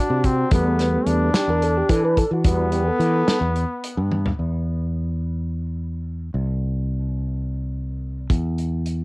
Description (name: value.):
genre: progressive instrumental, band music in an uneven meter.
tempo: 216 BPM (eighths).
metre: 7/8.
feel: straight.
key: E minor.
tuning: A4 = 441 Hz.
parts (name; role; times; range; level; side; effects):
clear flugelhorn; second line; 0.0-4.1 s; B3 to D4; -24 LUFS; left 2 dB; cassette tape, analog delay.
tonewheel organ; accompaniment; 0.0-3.4 s; E3 to B4; -23 LUFS; right 1 dB; overdrive, slow rotary speaker, cassette tape.
fretless electric bass; bass; 0.1-9.0 s; C2 to E3; -22 LUFS; equal; none.
loose indie drum kit; drums; 0.2-4.4, 8.3-9.0 s; hi-hat, kick drum, snare drum, toms; -21 LUFS; equal; cassette tape.
room: light reverb.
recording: home recording on cassette.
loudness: -19 LUFS.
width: side -24 dB against mid.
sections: 0.0-4.4 A section; 4.4-9.0 B section.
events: tonewheel organ solo 0.0-4.4; drum fill 4.1.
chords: 0.0 N.C.; 0.5 Gadd9/E; 2.5 Em; 4.4 N.C..